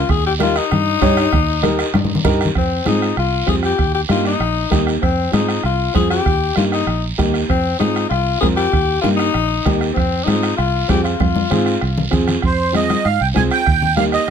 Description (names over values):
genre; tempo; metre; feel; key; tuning
latin, cumbia; 194 BPM; 4/4; straight; F minor; A4 = 440 Hz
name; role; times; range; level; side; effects
growling tenor saxophone; second line; 0.0-12.1 s; C4 to Ab4; -20 LUFS; left 8 dB; none
fingered electric bass; bass; 0.0-14.3 s; Bb1 to Ab2; -20 LUFS; right 1 dB; none
bombo; percussion; 0.1-14.3 s; none; -22 LUFS; right 4 dB; none
congas; percussion; 0.1-14.1 s; none; -21 LUFS; left 5 dB; none
guiro; percussion; 0.1-14.3 s; none; -28 LUFS; right 5 dB; none
dark upright piano; accompaniment; 0.4-14.2 s; Bb3 to Db5; -21 LUFS; right 1 dB; none
accordion; melody; 12.5-14.3 s; C5 to Ab5; -17 LUFS; right 6 dB; light tremolo tuning
room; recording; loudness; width
light reverb; close, detailed microphones; -14 LUFS; side -7 dB against mid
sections
0.0-2.6 A section; 2.6-12.4 B section; 12.4-14.3 C section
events
tenor saxophone solo 0.0-2.6, 2.6-12.4; drum fill 1.9-2.6, 11.2-12.4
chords
0.1 Eb; 2.6 Fm; 3.8 Eb; 5.0 Fm; 6.3 Eb; 7.5 Fm; 8.7 Eb; 10.0 Fm; 13.7 Eb